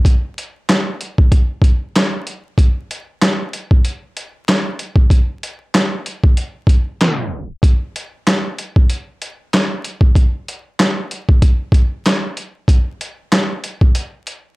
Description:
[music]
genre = hip hop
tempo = 95 BPM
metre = 4/4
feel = swing 57% on 16ths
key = none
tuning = none
[part]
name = boom bap sampler-style drum kit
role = drums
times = 0.0-14.4 s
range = handclaps, hi-hat, kick drum, snare drum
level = -13 LUFS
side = equal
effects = vintage 12-bit sampler grit
[sound]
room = light reverb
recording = dry, gritty hardware recording, vinyl crackle, tape stop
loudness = -14 LUFS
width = side -22 dB against mid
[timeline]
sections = 0.0-7.6 A section; 7.6-14.6 B section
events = tape stop 7.0-7.6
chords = none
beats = | 0.05 0.68 1.31 1.95 | 2.58 3.21 3.84 4.47 | 5.10 5.74 6.37 7.00 | 7.63 8.26 8.89 9.53 | 10.16 10.79 11.42 12.05 | 12.68 13.31 13.95

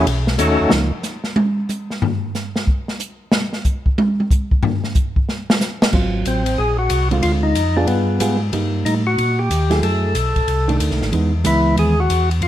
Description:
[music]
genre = soul jazz organ trio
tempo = 184 BPM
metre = 4/4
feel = swing 64% on 8ths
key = unclear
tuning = A4 = 440 Hz
[part]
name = percussive tonewheel organ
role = melody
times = 0.0-0.7, 6.3-12.5 s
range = A3 to A4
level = -20 LUFS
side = left 2 dB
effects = slow rotary speaker, overdrive
[part]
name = hollow-body jazz guitar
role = accompaniment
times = 0.0-0.9, 5.9-11.9 s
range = D3 to Ab4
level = -22 LUFS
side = right 3 dB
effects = none
[part]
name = mellow tonewheel organ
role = bass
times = 0.0-0.9, 5.9-12.5 s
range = Ab1 to Bb2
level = -19 LUFS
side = equal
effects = chorus vibrato, slow rotary speaker
[part]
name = open jazz drum kit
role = drums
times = 0.1-12.5 s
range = crash cymbal, hi-hat, kick drum, ride cymbal, snare drum, toms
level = -20 LUFS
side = equal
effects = none
[sound]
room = moderate large studio reverb, RT60 1.4 s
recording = none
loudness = -16 LUFS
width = side -12 dB against mid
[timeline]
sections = 0.0-5.9 A section; 5.9-12.5 B section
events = drum solo 0.7-5.9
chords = 0.1 Cb9; 0.7 Db69; 2.0 N.C.; 5.9 Ab13; 7.2 Dm7b5; 7.9 G7b9; 8.5 Eb; 9.8 Gbm9; 10.5 Cm69; 11.1 Emaj7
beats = 0.07 0.39 | 0.72 1.04 1.37 1.70 | 2.02 2.35 2.67 3.00 | 3.32 3.65 3.97 4.30 | 4.62 4.95 5.28 5.60 | 5.92 6.25 6.58 6.90 | 7.23 7.55 7.88 8.20 | 8.53 8.85 9.18 9.50 | 9.83 10.15 10.48 10.80 | 11.13 11.45 11.78 12.10 | 12.43

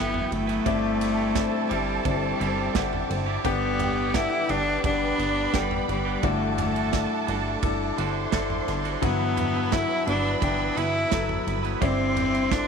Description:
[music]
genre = piano-driven pop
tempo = 86 BPM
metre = 4/4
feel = straight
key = G major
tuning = A4 = 440 Hz
[part]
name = clear cello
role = melody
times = 0.0-12.7 s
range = G3 to E4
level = -27 LUFS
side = left 1 dB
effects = none
[part]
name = warm studio violin section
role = second line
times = 0.0-12.7 s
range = E4 to C6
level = -33 LUFS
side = right 14 dB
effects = none
[part]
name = clear concert grand piano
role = accompaniment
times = 0.0-12.7 s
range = G2 to G5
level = -29 LUFS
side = left 13 dB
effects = none
[part]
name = warm studio string section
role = sustained chords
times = 0.0-12.7 s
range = E4 to E6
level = -36 LUFS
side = left 3 dB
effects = none
[part]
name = direct-recorded clean electric guitar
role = riff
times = 0.0-12.7 s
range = G2 to B4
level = -34 LUFS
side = right 16 dB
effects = none
[part]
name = plucky analog bass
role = bass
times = 0.0-12.6 s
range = G1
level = -31 LUFS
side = right 1 dB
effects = none
[part]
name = modern studio drum kit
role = drums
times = 0.1-12.7 s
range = kick drum, ride cymbal, snare drum, toms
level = -31 LUFS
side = right 5 dB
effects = none
[sound]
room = light reverb, small room ambience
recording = 1960s-style stereo with parts hard left and right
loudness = -22 LUFS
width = side -6 dB against mid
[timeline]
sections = 0.0-12.7 A section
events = none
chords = 0.0 Emadd9/G; 0.7 Cadd9/G; 3.4 G; 6.2 Dadd9/G; 9.0 Emadd9/G; 11.8 Cadd9/G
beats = | 0.66 1.35 2.05 2.75 | 3.45 4.14 4.84 5.54 | 6.24 6.93 7.63 8.33 | 9.03 9.72 10.42 11.12 | 11.82 12.51

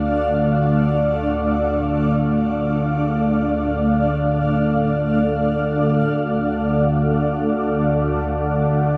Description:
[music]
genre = dark ambient drone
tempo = free time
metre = none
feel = none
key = unclear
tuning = A4 = 441 Hz
[part]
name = granular cloud pad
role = sustained chords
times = 0.0-9.0 s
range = A3 to F5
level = -21 LUFS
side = equal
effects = built-in reverb, shimmer reverb
[part]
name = gamelan-type bronze metallophone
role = arpeggios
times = 0.0-9.0 s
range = none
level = barely audible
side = none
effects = none
[part]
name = organ-like drone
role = drone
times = 0.0-9.0 s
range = D2 to D3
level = -24 LUFS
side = equal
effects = ensemble chorus, built-in reverb
[part]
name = bubbling stepped-filter texture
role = texture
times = 8.0-9.0 s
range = none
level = barely audible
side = none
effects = none
[sound]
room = wet huge ambient reverb, RT60 7.1 s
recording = dark, warm production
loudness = -19 LUFS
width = mono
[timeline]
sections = 0.0-1.7 A section; 1.7-9.0 B section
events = none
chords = 0.0 Dm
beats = free time

